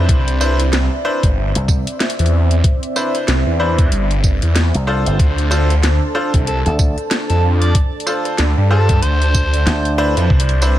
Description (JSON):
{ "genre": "glitch hop", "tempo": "94 BPM", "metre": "4/4", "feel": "swing 59% on 16ths", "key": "D dorian", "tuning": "A4 = 440 Hz", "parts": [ { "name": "dark analog pad", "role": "sustained chords", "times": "0.0-10.8 s", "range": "C4 to A5", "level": "-24 LUFS", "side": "right 2 dB", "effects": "chorus, sidechain pumping" }, { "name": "bright concert grand piano", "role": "stabs", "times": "0.0-10.8 s", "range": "D4 to C5", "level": "-21 LUFS", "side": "left 1 dB", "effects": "sidechain pumping, digital delay" }, { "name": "phased detuned saw bass", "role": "bass", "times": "0.0-10.8 s", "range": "G1 to G2", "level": "-15 LUFS", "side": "equal", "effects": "phaser" }, { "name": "drum and bass drum kit", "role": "drums", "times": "0.1-10.8 s", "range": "hi-hat, rim click, snare drum, tambourine", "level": "-22 LUFS", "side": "equal", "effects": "none" }, { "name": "electronic kick drum", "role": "drums", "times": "0.1-10.5 s", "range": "none", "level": "-15 LUFS", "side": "equal", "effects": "none" }, { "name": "slap bass with an envelope filter", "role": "bass", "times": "1.6-10.1 s", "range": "G1 to D2", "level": "-17 LUFS", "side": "equal", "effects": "none" }, { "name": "overdriven harmonica", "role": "melody", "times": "6.5-9.9 s", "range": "A4 to D5", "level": "-24 LUFS", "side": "equal", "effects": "digital delay" } ], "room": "little or no reverb", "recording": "none", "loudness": "-13 LUFS", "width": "side -13 dB against mid", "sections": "0.0-10.8 A section", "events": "none", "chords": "0.1 Cmaj9; 5.2 Dm7" }